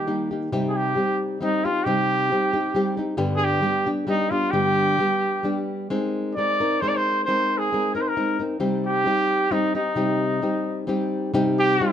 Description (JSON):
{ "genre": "mexican folk", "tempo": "133 BPM", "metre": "3/4", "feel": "swing 53% on 8ths, rubato", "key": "C minor", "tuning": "A4 = 440 Hz", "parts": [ { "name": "clear trumpet", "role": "melody", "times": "0.0-11.9 s", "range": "Eb4 to D5", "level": "-22 LUFS", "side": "right 1 dB", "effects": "none" }, { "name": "nylon-string guitar", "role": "accompaniment", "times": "0.0-11.9 s", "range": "G2 to Bb4", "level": "-23 LUFS", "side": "left 1 dB", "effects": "none" } ], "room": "moderate recital hall reverb, RT60 1.5 s", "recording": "close, detailed microphones", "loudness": "-20 LUFS", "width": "side -9 dB against mid", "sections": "0.5-11.3 A section", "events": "none", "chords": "0.0 Eb; 0.5 Cm; 3.2 G; 5.9 Abadd9; 8.6 Cm" }